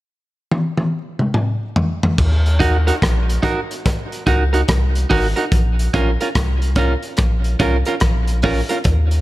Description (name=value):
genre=roots reggae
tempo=72 BPM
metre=4/4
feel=swing 64% on 16ths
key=Bb minor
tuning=A4 = 439 Hz
part: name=crunchy breakbeat drum kit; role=drums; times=0.5-9.2 s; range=crash cymbal, hi-hat, kick drum, rim click, toms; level=-19 LUFS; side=equal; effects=none
part: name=soft dub sub bass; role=bass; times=2.2-9.2 s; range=Ab1 to Eb2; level=-17 LUFS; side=equal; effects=none
part: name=electric guitar at the edge of break-up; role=accompaniment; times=2.6-8.8 s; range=Db4 to Bb4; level=-20 LUFS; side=right 2 dB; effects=tape echo
room=light reverb, studio reverb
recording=none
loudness=-15 LUFS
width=side -17 dB against mid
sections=0.0-2.2 A section; 2.2-8.9 B section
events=drum fill 0.5-2.2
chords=0.0 N.C.; 2.2 Ebm; 5.5 Bbm